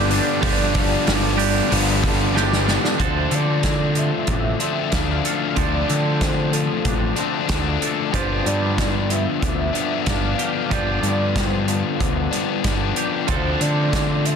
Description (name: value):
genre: rock, shoegaze and dream pop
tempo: 93 BPM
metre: 4/4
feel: straight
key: D minor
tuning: A4 = 440 Hz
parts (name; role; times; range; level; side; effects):
- warm velvety synth lead; melody; 0.0-14.4 s; A4 to F5; -28 LUFS; right 2 dB; chorus, slapback echo
- twangy electric guitar; arpeggios; 0.0-14.4 s; F3 to A4; -32 LUFS; right 2 dB; ensemble chorus, slapback echo
- biting overdriven guitar; riff; 0.0-14.4 s; G2 to D4; -23 LUFS; left 13 dB; lush chorus
- distorted electric guitar; riff; 0.0-3.0 s; G2 to D4; -25 LUFS; right 1 dB; overdrive
- twangy electric guitar; riff; 0.0-14.4 s; G2 to A4; -27 LUFS; right 14 dB; reverse reverb
- growling picked electric bass; bass; 0.0-14.4 s; G1 to D3; -23 LUFS; equal; overdrive
- loose indie drum kit; drums; 0.1-14.4 s; hi-hat, kick drum, snare drum; -24 LUFS; right 1 dB; none
room: small room ambience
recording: dense, heavily limited modern master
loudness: -18 LUFS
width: side -6 dB against mid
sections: 0.0-3.0 A section; 3.0-14.4 B section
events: drum fill 2.4-3.0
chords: 0.0 G5; 3.0 Dm7; 8.1 G5; 13.3 Dm7